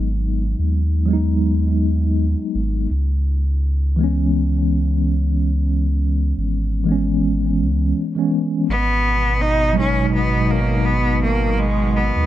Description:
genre	trip hop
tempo	83 BPM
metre	4/4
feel	swing 59% on 16ths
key	G# minor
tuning	A4 = 440 Hz
part	mellow tine electric piano	accompaniment	0.0-12.3 s	B2 to D#4	-21 LUFS	equal	medium stereo tremolo, tape echo
part	warm sub bass	bass	0.0-12.3 s	G#1 to D#2	-19 LUFS	equal	none
part	bright cello	melody	8.7-12.3 s	G#3 to D#4	-20 LUFS	equal	vintage 12-bit sampler grit, tape echo
part	rich studio string section	sustained chords	8.7-12.3 s	B2	-25 LUFS	right 1 dB	none
room	little or no reverb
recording	none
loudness	-16 LUFS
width	side -13 dB against mid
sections	0.0-12.3 A section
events	none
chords	0.0 G#m7; 2.9 C#m7; 8.7 G#m7

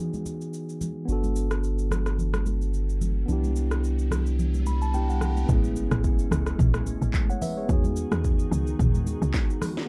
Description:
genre	amapiano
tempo	109 BPM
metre	4/4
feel	swing 55% on 16ths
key	A lydian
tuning	A4 = 437 Hz
part	mellow tine electric piano	accompaniment	0.0-9.9 s	E3 to B5	-34 LUFS	equal	none
part	downlifter, riser and impact	sound effects	3.5-7.7 s	none	-40 LUFS	equal	none
part	afro-pop drum kit	drums	0.1-9.9 s	handclaps, hi-hat, kick drum, rim click, shaker, snare drum, toms	-29 LUFS	equal	none
part	congas	percussion	0.1-9.8 s	none	-36 LUFS	equal	none
part	punchy sub bass	bass	1.1-5.4 s	G1 to C2	-27 LUFS	equal	none
part	glassy FM pad	sustained chords	5.9-9.9 s	D#3 to G#4	-39 LUFS	equal	ensemble chorus, built-in reverb
part	tight log drum bass	bass	5.5-9.3 s	A1 to E2	-29 LUFS	equal	none
room	little or no reverb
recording	dark, warm production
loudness	-26 LUFS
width	mono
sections	0.0-5.5 A section; 5.5-9.9 B section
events	riser 3.5-5.5; tine electric piano fill 4.4-5.5; impact 5.5-7.7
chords	0.0 Emaj9; 1.1 Gmaj9; 3.3 Cmaj9; 5.5 Amaj9; 7.7 Emaj9

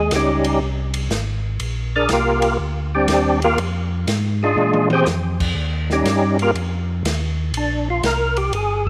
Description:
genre	soul jazz organ trio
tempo	121 BPM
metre	4/4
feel	swing 68% on 8ths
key	Bb mixolydian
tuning	A4 = 440 Hz
part	percussive tonewheel organ	melody	0.0-8.9 s	G3 to D5	-21 LUFS	equal	slow rotary speaker, overdrive, chorus vibrato
part	mellow tonewheel organ	bass	0.0-8.9 s	G1 to Bb2	-25 LUFS	equal	chorus vibrato, slow rotary speaker
part	open jazz drum kit	drums	0.1-8.9 s	crash cymbal, hi-hat, kick drum, ride cymbal, snare drum, toms	-29 LUFS	equal	none
room	moderate echo chamber reverb, RT60 1.8 s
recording	none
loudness	-20 LUFS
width	mono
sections	0.0-8.9 A section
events	tonewheel organ solo 0.0-8.9; drum fill 4.6-5.1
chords	0.0 Eb6; 1.6 Bb69; 3.6 Fm; 4.6 Bb13; 5.6 Eb9; 7.5 Bb13

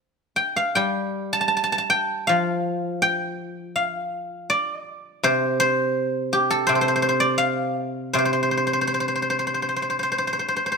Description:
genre	chinese traditional, Chinese solo plucked strings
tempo	82 BPM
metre	4/4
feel	rubato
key	C zhi mode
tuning	A4 = 440 Hz
part	guzheng	solo	0.0-10.8 s	C3 to A5	-20 LUFS	equal	none
room	light reverb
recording	close, detailed microphones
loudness	-20 LUFS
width	side -4 dB against mid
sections	0.0-10.8 A section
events	none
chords	none

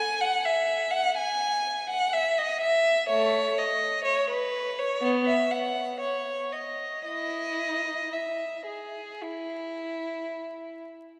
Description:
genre	classical, baroque-style suite movement for unaccompanied violin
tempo	54-64 BPM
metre	4/4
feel	rubato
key	E major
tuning	A4 = 440 Hz
part	rich violin	solo	0.0-10.9 s	A3 to G#5	-28 LUFS	equal	none
room	wet church reverb, RT60 3.4 s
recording	heard from further back in the room, vinyl crackle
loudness	-28 LUFS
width	mono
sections	0.0-11.2 A section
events	none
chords	none

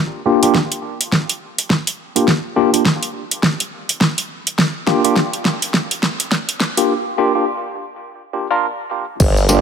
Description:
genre	glitch hop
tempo	104 BPM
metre	4/4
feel	swing 60% on 16ths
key	G minor pentatonic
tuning	A4 = 440 Hz
part	tine electric piano	stabs	0.3-9.6 s	Bb3 to Bb4	-18 LUFS	left 1 dB	medium stereo tremolo, sidechain pumping, low-pass filter, dub echo
part	pop drum kit	drums	0.4-9.6 s	crash cymbal, hi-hat, snare drum, tambourine	-17 LUFS	right 1 dB	none
part	electronic kick drum	drums	0.5-9.3 s	none	-21 LUFS	equal	high-pass filter on kick
part	formant-sweep wobble bass	bass	9.2-9.6 s	G1	-14 LUFS	equal	chorus, tube saturation
room	light reverb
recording	high-pass filter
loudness	-15 LUFS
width	side -7 dB against mid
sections	0.0-9.2 A section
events	build-up 0.0-9.2; drum fill 0.0-6.9; filter sweep on tine electric piano 0.0-9.2; filter sweep 0.0-9.2; break 6.9-9.2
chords	0.0 Gm7

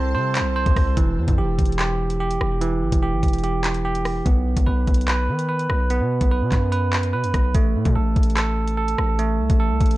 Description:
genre	hip hop, drill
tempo	146 BPM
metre	4/4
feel	half-time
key	E minor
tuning	A4 = 442 Hz
part	muted felt-like synth keys	accompaniment	0.0-1.0 s	G3 to A4	-33 LUFS	left 6 dB	chorus
part	granular cloud pad	sustained chords	0.0-0.9 s	C5 to E6	-39 LUFS	left 3 dB	built-in reverb
part	bell-like tine electric piano	arpeggios	0.0-10.0 s	E3 to C5	-23 LUFS	right 3 dB	tape echo
part	distorted 808-style bass	bass	0.0-10.0 s	E1 to D#3	-22 LUFS	equal	distortion
part	drill drum kit	drums	0.4-10.0 s	handclaps, hi-hat, kick drum, rim click	-21 LUFS	equal	vintage 12-bit sampler grit
room	little or no reverb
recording	dark, warm production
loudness	-18 LUFS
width	side -17 dB against mid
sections	1.0-10.0 A section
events	none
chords	0.0 C6; 1.0 Em; 4.3 B5; 7.5 N.C.

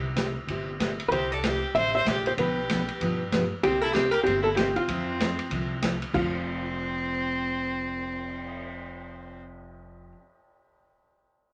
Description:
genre	country, western swing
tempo	191 BPM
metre	4/4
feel	swing 61% on 8ths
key	F major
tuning	A4 = 440 Hz
part	picked steel-string acoustic guitar	accompaniment	0.0-10.2 s	B2 to B4	-36 LUFS	equal	none
part	upright bass	bass	0.0-10.1 s	F1 to G2	-39 LUFS	equal	none
part	vintage drum kit	drums	0.2-8.6 s	crash cymbal, cymbal swell, hi-hat, kick drum, ride cymbal, snare drum	-35 LUFS	equal	none
part	hollow-body jazz guitar	melody	1.1-10.1 s	F4 to E5	-29 LUFS	equal	none
part	clear fiddle	second line	1.1-9.4 s	C4 to C5	-33 LUFS	equal	none
room	wet studio ambience, RT60 0.5 s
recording	none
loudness	-27 LUFS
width	mono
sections	0.0-6.1 A section; 6.1-8.7 B section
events	none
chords	0.0 C; 2.4 G7/B; 3.6 C7; 4.9 Fmaj7; 6.1 F

